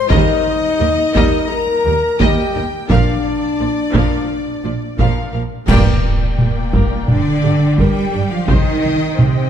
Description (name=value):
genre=cinematic, epic orchestral film score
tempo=86 BPM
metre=4/4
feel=straight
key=G minor from 5.7 s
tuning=A4 = 443 Hz
part: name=rich studio violin section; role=second line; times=0.0-9.5 s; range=Bb4 to Bb5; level=-26 LUFS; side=left 4 dB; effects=none
part: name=mellow French horn section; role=sustained chords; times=0.0-9.5 s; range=Bb3 to Bb4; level=-20 LUFS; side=left 3 dB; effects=none
part: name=dark symphonic violin section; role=melody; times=0.1-9.5 s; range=Bb4 to G5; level=-26 LUFS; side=left 5 dB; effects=none
part: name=dark symphonic viola section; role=accompaniment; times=0.1-9.5 s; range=F3 to Eb5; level=-26 LUFS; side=right 1 dB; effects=none
part: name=rich symphonic cello section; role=bass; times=0.1-9.5 s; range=Eb2 to G3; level=-20 LUFS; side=right 3 dB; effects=none
part: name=rich symphonic double bass section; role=bass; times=0.1-9.3 s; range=Bb1 to G2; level=-21 LUFS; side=right 5 dB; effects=none
part: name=solo taiko drums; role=drums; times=0.1-9.5 s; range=none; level=-18 LUFS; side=equal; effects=none
part: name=clash cymbals and concert bass drum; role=percussion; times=5.7-7.0 s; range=none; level=-20 LUFS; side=equal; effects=none
room=moderate concert hall reverb, RT60 1.9 s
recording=dark, warm production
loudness=-13 LUFS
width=side -9 dB against mid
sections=0.0-5.7 A section; 5.7-9.5 B section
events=band accent 5.7-6.4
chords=0.1 Eb; 2.9 Bb; 5.7 Gm; 8.5 Cm